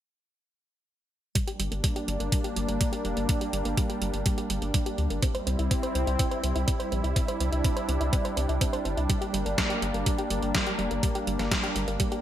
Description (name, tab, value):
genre	italo disco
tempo	124 BPM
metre	4/4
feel	straight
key	G dorian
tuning	A4 = 439 Hz
part	warm analog pad	sustained chords	1.4-12.2 s	G3 to E4	-31 LUFS	right 1 dB	chorus
part	soft round pluck	arpeggios	1.4-12.2 s	G3 to C5	-34 LUFS	right 1 dB	chorus, digital delay
part	detuned 8-bit digital drum machine	drums	1.4-12.2 s	hi-hat, snare drum	-31 LUFS	right 1 dB	gated reverb
part	electronic kick drum	drums	1.4-12.1 s	none	-28 LUFS	equal	none
part	round analog bass	bass	1.6-12.0 s	F1 to D2	-30 LUFS	equal	none
room	moderate plate reverb, RT60 1.9 s, digital ambience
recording	bright 1980s-style digital production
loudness	-25 LUFS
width	side -11 dB against mid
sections	1.4-12.2 A section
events	filter sweep on synth arpeggio sound 1.4-12.2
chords	1.4 Gm; 5.2 C; 9.1 Gm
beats	| 1.35 1.84 2.32 2.81 | 3.29 3.77 4.26 4.74 | 5.22 5.71 6.19 6.68 | 7.16 7.64 8.13 8.61 | 9.10 9.58 10.06 10.55 | 11.03 11.52 12.00